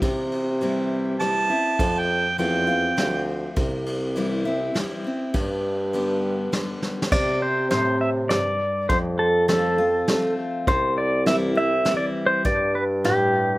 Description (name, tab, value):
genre	honky-tonk and classic country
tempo	101 BPM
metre	3/4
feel	straight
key	C major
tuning	A4 = 439 Hz
part	picked steel-string acoustic guitar	accompaniment	0.0-13.6 s	F2 to G4	-27 LUFS	left 2 dB	none
part	dark bassoon	bass	0.0-13.6 s	C2 to C3	-25 LUFS	equal	none
part	vintage brush drum kit	drums	0.0-13.2 s	crash cymbal, hi-hat, kick drum, ride cymbal, rim click, snare drum	-28 LUFS	equal	none
part	mellow harmonica	second line	1.2-3.2 s	G5 to A5	-23 LUFS	right 3 dB	slapback echo
part	pedal steel guitar	melody	7.1-13.6 s	G4 to E5	-21 LUFS	equal	slapback echo
room	little or no reverb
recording	none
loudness	-20 LUFS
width	side -18 dB against mid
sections	0.0-7.1 A section; 7.1-13.6 B section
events	harmonica solo 0.0-7.1; drum fill 6.8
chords	0.0 C; 1.8 F; 3.6 C; 5.3 G; 7.1 C5; 8.9 F; 10.7 C; 12.5 G5